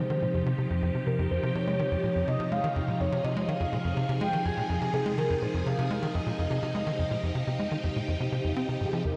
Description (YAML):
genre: ambient, sequencer-driven space music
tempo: 124 BPM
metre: 4/4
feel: straight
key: F minor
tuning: A4 = 440 Hz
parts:
  - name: mellow horn-like synth lead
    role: melody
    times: 0.0-9.2 s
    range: Ab4 to Ab5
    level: -35 LUFS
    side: equal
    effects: subtle chorus, shimmer reverb, analog delay
  - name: phased string machine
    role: sustained chords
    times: 0.0-9.2 s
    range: C3 to Ab4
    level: -34 LUFS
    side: equal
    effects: ensemble chorus, phaser, shimmer reverb
  - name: tight sequencer bass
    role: riff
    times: 0.0-9.1 s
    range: F2 to C4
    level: -32 LUFS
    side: equal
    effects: analog delay
room: wet lush hall reverb, RT60 2.4 s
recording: dreamy mix soaked in reverb, cassette tape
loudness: -29 LUFS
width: mono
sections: 0.0-9.2 A section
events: none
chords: 0.0 Fm7